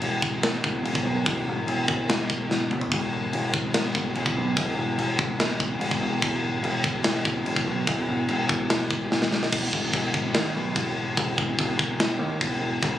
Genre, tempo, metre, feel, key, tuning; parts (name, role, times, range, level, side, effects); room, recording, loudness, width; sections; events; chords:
heavy metal; 145 BPM; 4/4; straight; A4 = 439 Hz
picked electric bass; bass; 0.0-13.0 s; E1 to D#2; -28 LUFS; equal
tight metal drum kit; drums; 0.0-12.9 s; crash cymbal, kick drum, snare drum, toms; -24 LUFS; equal
light reverb; recorded on a phone in the room, club reverb; -23 LUFS; side -12 dB against mid
0.0-9.5 A section; 9.5-13.0 B section
drum fill 2.5-2.9, 9.1-9.5